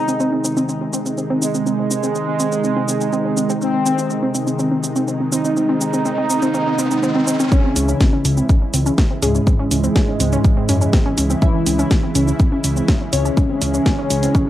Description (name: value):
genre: melodic techno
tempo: 123 BPM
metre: 4/4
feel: straight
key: C# harmonic minor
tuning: A4 = 441 Hz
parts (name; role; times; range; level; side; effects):
- analog synth brass; melody; 0.0-14.5 s; G#2 to E4; -21 LUFS; right 2 dB; chorus, sidechain pumping, analog delay
- lush unison pad; sustained chords; 0.0-14.5 s; B#2 to E4; -24 LUFS; equal; chorus, sidechain pumping
- wide unison pluck; arpeggios; 0.1-14.5 s; B#3 to C#4; -22 LUFS; equal; sidechain pumping, analog delay
- house drum kit; drums; 0.1-14.4 s; hi-hat, shaker, snare drum; -24 LUFS; equal; none
- riser; sound effects; 5.0-7.5 s; none; -30 LUFS; equal; none
- glassy wavetable pluck; second line; 7.5-14.5 s; G#4 to E5; -27 LUFS; left 4 dB; chorus, sidechain pumping, analog delay
- electronic kick drum; drums; 7.5-14.4 s; none; -15 LUFS; equal; none
- fat analog bass; bass; 7.8-14.3 s; C#2 to F#2; -18 LUFS; equal; sidechain pumping
room: light reverb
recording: dry, gritty hardware recording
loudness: -15 LUFS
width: side -13 dB against mid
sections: 0.0-7.5 A section; 7.5-14.5 B section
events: filter sweep on analog synth pad 0.0-7.5; riser 5.0-7.5; build-up 7.5-14.5; filter sweep on analog polysynth 7.5-14.5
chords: 0.0 G#; 7.5 C#m